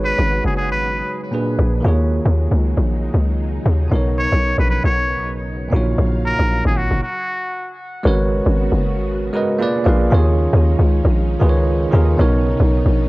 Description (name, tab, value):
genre	amapiano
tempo	116 BPM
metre	4/4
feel	swing 58% on 16ths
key	G# dorian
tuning	A4 = 440 Hz
part	trumpet with straight mute	melody	0.0-7.8 s	F#4 to C#5	-22 LUFS	equal	cassette tape, analog delay
part	bell-like tine electric piano	accompaniment	0.0-13.1 s	A#2 to E#5	-21 LUFS	right 2 dB	fast stereo tremolo, cassette tape
part	string machine, violas	sustained chords	0.0-13.1 s	A#2 to E#5	-29 LUFS	left 1 dB	ensemble chorus, cassette tape
part	hollow log drum bass	bass	0.0-13.1 s	F#1 to D#2	-16 LUFS	equal	none
part	punchy sub bass	bass	3.9-7.0 s	A#1 to B1	-30 LUFS	equal	none
room	light reverb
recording	home recording on cassette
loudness	-15 LUFS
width	side -20 dB against mid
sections	0.0-8.1 A section; 8.1-13.1 B section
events	stop 7.0-8.1; drop 8.1-13.1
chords	0.0 G#m7; 1.3 A#7b9; 1.8 D#7sus4; 3.9 Bmaj9; 5.7 D#m9/A#; 7.5 N.C.; 8.1 G#m11; 9.6 A#7b9; 10.1 D#7sus4; 12.2 Bmaj9